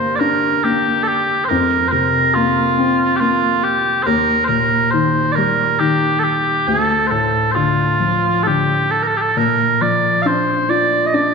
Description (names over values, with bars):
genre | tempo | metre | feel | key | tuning
celtic folk, Celtic slow air | 69 BPM | 3/4 | rubato | unclear | A4 = 439 Hz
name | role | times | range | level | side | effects
mellow small bagpipes | melody | 0.0-11.3 s | F4 to F5 | -15 LUFS | right 2 dB | none
felt-muted upright piano | accompaniment | 0.0-11.3 s | D2 to F4 | -18 LUFS | left 3 dB | none
room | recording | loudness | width
wet scoring stage reverb, RT60 2.2 s | recorded in a church or concert hall, nothing above 10.3 kHz | -14 LUFS | side -4 dB against mid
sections
0.0-11.3 A section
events
none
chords
0.0 Gm; 1.5 Fsus4; 4.1 Eb; 6.7 Dm; 9.4 Bb